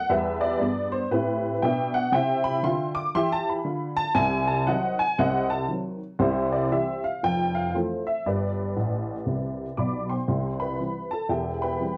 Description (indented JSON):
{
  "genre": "jazz, stride piano",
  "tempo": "118 BPM",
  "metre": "4/4",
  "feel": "swing 63% on 8ths",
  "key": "C major",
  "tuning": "A4 = 444 Hz",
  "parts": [
    { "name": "honky-tonk upright piano", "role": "solo", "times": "0.0-12.0 s", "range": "E1 to D6", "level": "-26 LUFS", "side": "equal", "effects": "none" }
  ],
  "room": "moderate studio ambience, RT60 0.5 s",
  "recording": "dark, warm production",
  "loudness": "-26 LUFS",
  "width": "mono",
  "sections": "0.0-10.3 A section; 10.3-12.0 B section",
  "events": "honky-tonk piano fill 8.7-10.3",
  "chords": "0.1 Em; 2.1 C; 4.2 Cdim; 6.2 C; 7.2 Fmaj7; 8.2 G; 10.3 C; 11.3 C/E"
}